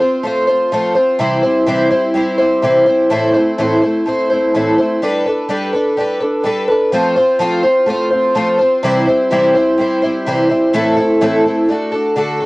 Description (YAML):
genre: rock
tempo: 126 BPM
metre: 4/4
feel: straight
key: unclear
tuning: A4 = 440 Hz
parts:
  - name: picked twelve-string acoustic guitar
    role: solo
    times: 0.0-12.5 s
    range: A2 to C5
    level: -12 LUFS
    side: equal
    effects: cassette tape
room: moderate booth ambience, RT60 0.2 s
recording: home recording on cassette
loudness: -12 LUFS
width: side -23 dB against mid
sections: 0.0-12.5 A section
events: none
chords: 0.0 F; 1.2 C; 3.1 Am; 5.0 Gadd9; 6.9 F; 8.8 C; 10.7 Am; 11.7 D